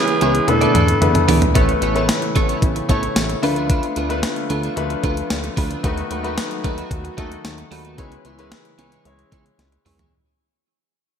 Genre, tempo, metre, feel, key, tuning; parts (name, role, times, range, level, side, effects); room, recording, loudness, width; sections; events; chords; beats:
1980s-style pop; 112 BPM; 4/4; straight; A major; A4 = 435 Hz
breathy tenor saxophone; melody; 0.0-1.3 s; G#4 to A4; -22 LUFS; right 4 dB; ping-pong delay
clear baby grand piano; accompaniment; 0.0-10.1 s; A2 to C#5; -22 LUFS; left 4 dB
chorused pulse-width pad; sustained chords; 0.0-10.1 s; C#3 to F#4; -27 LUFS; equal
clean electric guitar; riff; 0.1-10.1 s; A3 to D5; -26 LUFS; right 5 dB; analog chorus, ping-pong delay
clean 12-bit digital drum machine; drums; 0.1-10.1 s; hi-hat, kick drum, snare drum, tambourine, toms; -20 LUFS; equal; gated reverb
chorused synth bass; bass; 0.2-10.0 s; A1 to E2; -24 LUFS; equal
moderate plate reverb, RT60 2.0 s; bright 1980s-style digital production; -16 LUFS; side -8 dB against mid
0.0-1.6 A section; 1.6-10.1 B section
drum fill 0.5-1.6, 9.6-10.1; fade-out 1.6-10.1
0.5 E7sus4; 1.6 Aadd9; 3.4 Dm6; 5.8 B7/D#; 8.0 C#m7
0.48 1.02 | 1.55 2.09 2.62 3.16 | 3.70 4.23 4.77 5.30 | 5.84 6.38 6.91 7.45 | 7.98 8.52 9.05 9.59